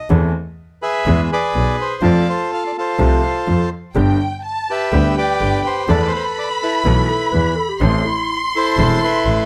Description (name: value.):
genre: tango.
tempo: 125 BPM.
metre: 4/4.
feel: rubato.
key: A minor.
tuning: A4 = 440 Hz.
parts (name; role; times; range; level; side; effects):
bandoneon; melody; 0.0-9.5 s; E4 to F5; -21 LUFS; equal; plate reverb.
bright upright piano; accompaniment; 0.1-9.5 s; E1 to A4; -22 LUFS; equal; none.
clear double bass; bass; 0.1-9.5 s; E1 to F2; -20 LUFS; equal; none.
warm studio violin section; second line; 3.9-9.5 s; G5 to C6; -24 LUFS; equal; none.
dark clarinet; second line; 7.1-8.4 s; E4 to B4; -26 LUFS; equal; none.
room: light reverb.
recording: none.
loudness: -17 LUFS.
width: mono.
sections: 0.0-9.5 A section.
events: none.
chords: 0.1 Am/E; 1.1 E; 2.0 F; 4.0 G; 5.9 Esus4; 7.8 Am.